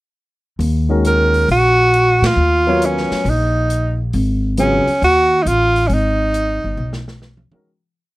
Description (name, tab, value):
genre	modal jazz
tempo	136 BPM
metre	4/4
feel	swing 67% on 8ths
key	Eb minor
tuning	A4 = 440 Hz
part	upright bass	bass	0.6-7.6 s	G1 to Bb2	-18 LUFS	equal	none
part	open jazz drum kit	drums	0.6-7.6 s	hi-hat, ride cymbal, snare drum, toms	-29 LUFS	left 1 dB	none
part	warm upright piano	accompaniment	0.9-4.9, 7.5-7.7 s	Db3 to Db5	-19 LUFS	left 2 dB	none
part	warm tenor saxophone	melody	1.1-7.2 s	Db4 to Bb4	-15 LUFS	right 1 dB	none
room	little or no reverb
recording	close, detailed microphones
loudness	-13 LUFS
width	side -18 dB against mid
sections	0.6-7.7 A section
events	band accent 2.1; fade-out 5.9-7.7; drum fill 6.8-7.7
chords	0.6 Ebm11; 4.1 Abm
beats	| 0.60 1.04 1.49 1.93 | 2.37 2.81 3.25 3.69 | 4.14 4.58 5.02 5.46 | 5.90 6.34 6.79 7.23